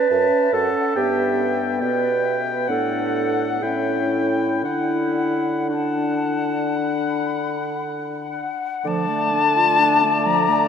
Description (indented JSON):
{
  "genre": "classical, slow romantic movement for wind quintet",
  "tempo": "52-71 BPM",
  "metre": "4/4",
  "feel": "rubato",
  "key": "D major",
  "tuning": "A4 = 442 Hz",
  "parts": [
    { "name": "concert flute", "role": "melody", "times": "0.0-10.7 s", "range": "D5 to B5", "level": "-23 LUFS", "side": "left 5 dB", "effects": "none" },
    { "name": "clear oboe", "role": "second line", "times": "0.0-10.7 s", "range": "D5 to A5", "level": "-26 LUFS", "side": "left 4 dB", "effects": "none" },
    { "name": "mellow clarinet", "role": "accompaniment", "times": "0.0-10.7 s", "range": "F3 to B4", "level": "-23 LUFS", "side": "right 3 dB", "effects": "none" },
    { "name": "warm French horn", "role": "accompaniment", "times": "0.0-10.7 s", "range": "A3 to D4", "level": "-27 LUFS", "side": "left 3 dB", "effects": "none" },
    { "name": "dark bassoon", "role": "bass", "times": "0.1-10.7 s", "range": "F#2 to D3", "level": "-27 LUFS", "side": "right 3 dB", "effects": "none" }
  ],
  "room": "wet cathedral reverb, RT60 5.7 s",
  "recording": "in a vast, echoing space",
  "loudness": "-18 LUFS",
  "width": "side -7 dB against mid",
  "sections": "0.0-8.9 A section; 8.9-10.7 B section",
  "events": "none",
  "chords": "0.0 F#m; 1.0 G; 2.7 D/A; 3.6 A7; 4.6 D; 8.9 Dm"
}